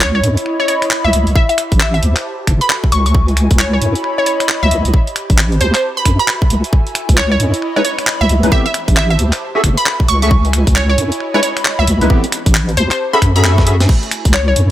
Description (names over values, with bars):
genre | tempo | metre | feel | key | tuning
UK garage, two-step garage | 134 BPM | 4/4 | swing 62% on 16ths | C# minor | A4 = 440 Hz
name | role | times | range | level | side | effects
glassy wavetable pluck | melody | 0.0-14.5 s | C5 to C#6 | -18 LUFS | equal | chorus, tape echo
deep soft wobble bass | bass | 0.0-14.7 s | F#1 to F#2 | -13 LUFS | equal | chorus, sidechain pumping
breakbeat sampler-style drum kit | drums | 0.0-14.7 s | crash cymbal, finger snaps, handclaps, hi-hat, snare drum | -18 LUFS | equal | none
airy breathy pad | texture | 0.2-14.7 s | A3 to B5 | -23 LUFS | equal | chorus, sidechain pumping
electronic kick drum | drums | 1.4-14.3 s | none | -12 LUFS | equal | none
percussive organ stab | stabs | 7.8-13.8 s | E3 to E5 | -18 LUFS | equal | ensemble chorus, tape echo
room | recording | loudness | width
light reverb | none | -11 LUFS | side -13 dB against mid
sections
0.0-14.7 A section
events
drum fill 13.4-13.9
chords
0.0 C#m9; 1.4 Am9; 2.3 F#m9; 3.1 C#m9; 4.9 Am9; 5.8 F#m9; 6.7 C#m9; 8.5 Am9; 9.4 F#m9; 10.3 C#m9; 12.1 Am9; 13.0 F#m9; 13.9 C#m9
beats
0.01 0.46 0.91 | 1.35 1.80 2.25 2.70 | 3.15 3.59 4.04 4.49 | 4.94 5.38 5.83 6.28 | 6.73 7.18 7.62 8.07 | 8.52 8.97 9.41 9.86 | 10.31 10.76 11.21 11.65 | 12.10 12.55 13.00 13.45 | 13.89 14.34